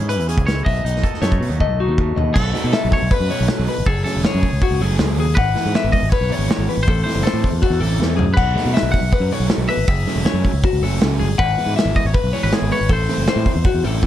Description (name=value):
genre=math rock and midwest emo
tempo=159 BPM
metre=4/4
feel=straight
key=unclear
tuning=A4 = 440 Hz
part: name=twangy electric guitar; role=melody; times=0.0-14.0 s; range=G#4 to F#5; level=-27 LUFS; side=equal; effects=none
part: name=twangy electric guitar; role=accompaniment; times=0.0-3.9 s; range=E2 to A4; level=-30 LUFS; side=right 10 dB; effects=none
part: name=clean electric guitar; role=arpeggios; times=0.0-14.1 s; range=F#4 to F#5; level=-24 LUFS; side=left 9 dB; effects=none
part: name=growling fingered electric bass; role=bass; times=0.0-14.1 s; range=E1 to B2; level=-20 LUFS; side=equal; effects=overdrive
part: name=loose indie drum kit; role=drums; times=0.1-14.1 s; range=crash cymbal, hi-hat, kick drum, snare drum, toms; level=-20 LUFS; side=equal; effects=none
part: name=crunchy overdriven guitar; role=riff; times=2.5-14.1 s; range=B2 to E4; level=-24 LUFS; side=right 2 dB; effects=none
room=little or no reverb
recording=dark, warm production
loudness=-15 LUFS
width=side -12 dB against mid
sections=0.0-2.4 A section; 2.4-14.1 B section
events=drum fill 1.6-2.4, 8.0-8.4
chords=0.0 E6; 0.7 B7; 2.4 B7sus4; 3.9 F#madd9; 5.4 E69/G#; 6.9 Am6; 8.4 B7sus4; 9.9 F#m9; 11.4 E69/G#; 12.9 Am6